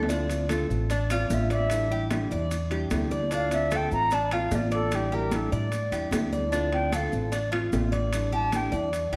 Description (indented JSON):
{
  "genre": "latin, Cuban son and guajira",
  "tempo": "150 BPM",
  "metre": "4/4",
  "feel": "straight",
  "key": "D minor",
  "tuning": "A4 = 436 Hz",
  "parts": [
    { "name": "nylon-string guitar", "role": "accompaniment", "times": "0.0-9.2 s", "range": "D3 to F4", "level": "-36 LUFS", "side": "equal", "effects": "none" },
    { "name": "Cuban tres", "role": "arpeggios", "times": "0.0-9.2 s", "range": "D4 to D5", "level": "-33 LUFS", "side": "equal", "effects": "slapback echo" },
    { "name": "upright bass", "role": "bass", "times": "0.0-9.2 s", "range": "A1 to A2", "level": "-32 LUFS", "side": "equal", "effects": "none" },
    { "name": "timbales", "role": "percussion", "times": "0.0-9.2 s", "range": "none", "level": "-38 LUFS", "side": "equal", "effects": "none" },
    { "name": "congas", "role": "percussion", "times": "0.1-9.2 s", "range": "none", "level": "-37 LUFS", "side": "equal", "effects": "none" },
    { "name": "maracas", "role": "percussion", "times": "0.1-9.1 s", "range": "none", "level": "-48 LUFS", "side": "equal", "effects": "none" },
    { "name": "reedy silver concert flute", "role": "melody", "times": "1.1-8.7 s", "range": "G4 to Bb5", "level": "-32 LUFS", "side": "equal", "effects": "none" }
  ],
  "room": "moderate large studio reverb, RT60 1.5 s",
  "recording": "none",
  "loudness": "-27 LUFS",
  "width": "mono",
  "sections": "0.1-9.2 A section",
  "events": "flute solo 0.1-9.2",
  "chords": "0.1 Dm7; 1.7 A7sus4; 3.3 Dm7; 4.9 A7sus4; 6.5 Dm7; 8.1 A7sus4"
}